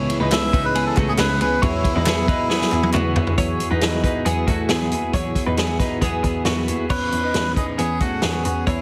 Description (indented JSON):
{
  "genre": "jangly indie pop",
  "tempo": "136 BPM",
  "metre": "4/4",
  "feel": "straight",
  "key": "E major",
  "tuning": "A4 = 441 Hz",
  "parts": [
    { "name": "combo organ", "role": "accompaniment", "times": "0.0-6.9 s", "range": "C#4 to B4", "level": "-32 LUFS", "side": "equal", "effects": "none" },
    { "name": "twelve-string electric guitar", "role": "accompaniment", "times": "0.0-8.8 s", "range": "C#3 to G#4", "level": "-29 LUFS", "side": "equal", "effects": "none" },
    { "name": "string machine, violas", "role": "sustained chords", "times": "0.0-3.4 s", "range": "C#3 to B3", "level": "-36 LUFS", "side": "equal", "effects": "none" },
    { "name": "twelve-string electric guitar", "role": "arpeggios", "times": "0.0-8.8 s", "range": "A3 to C#5", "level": "-28 LUFS", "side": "equal", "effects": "none" },
    { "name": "rich cello", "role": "bass", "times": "0.0-8.8 s", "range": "C#2 to E2", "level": "-27 LUFS", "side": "equal", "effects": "none" },
    { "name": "vintage drum kit", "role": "drums", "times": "0.1-8.8 s", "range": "crash cymbal, hi-hat, kick drum, ride cymbal, snare drum, toms", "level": "-25 LUFS", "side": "equal", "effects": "none" },
    { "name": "melodica", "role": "melody", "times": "0.3-2.9, 6.9-8.8 s", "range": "E4 to E5", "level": "-27 LUFS", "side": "equal", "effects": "tube saturation" },
    { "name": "group handclap", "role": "percussion", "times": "0.3-3.0 s", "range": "none", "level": "-32 LUFS", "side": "equal", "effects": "none" }
  ],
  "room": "light reverb, small room ambience",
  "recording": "heavily compressed radio sound, multiband compression",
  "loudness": "-20 LUFS",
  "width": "mono",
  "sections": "0.0-3.4 A section; 3.4-6.9 B section; 6.9-8.8 C section",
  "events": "drum fill 2.5-3.4",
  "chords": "0.0 C#m7; 1.6 Eadd9; 6.9 E6",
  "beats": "0.31 0.75 1.19 | 1.62 2.06 2.50 2.94 | 3.38 3.82 4.26 4.70 | 5.14 5.58 6.02 6.46 | 6.90 7.34 7.79 8.23 | 8.67"
}